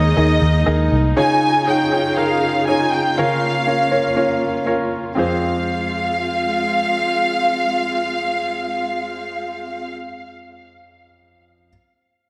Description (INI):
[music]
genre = pop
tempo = 120 BPM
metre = 4/4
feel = straight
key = F minor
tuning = A4 = 440 Hz
[part]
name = warm symphonic violin section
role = melody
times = 0.0-9.9 s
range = Eb5 to Ab5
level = -23 LUFS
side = equal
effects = diffuse ambient delay
[part]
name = clear concert grand piano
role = accompaniment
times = 0.0-11.7 s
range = F2 to Eb5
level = -23 LUFS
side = equal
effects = none
[part]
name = rich studio string section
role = sustained chords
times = 0.0-9.9 s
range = Db3 to Ab4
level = -28 LUFS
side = equal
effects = none
[part]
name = vintage muted picked electric bass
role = bass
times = 0.0-1.1 s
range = C2 to Eb2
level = -18 LUFS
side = equal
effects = none
[sound]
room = wet plate reverb, RT60 2.1 s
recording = dreamy mix soaked in reverb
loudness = -19 LUFS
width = mono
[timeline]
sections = 0.0-5.2 A section; 5.2-9.2 B section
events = none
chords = 0.0 Ebsus4; 1.2 Dbadd9; 3.2 Bbm/Db; 5.2 Fm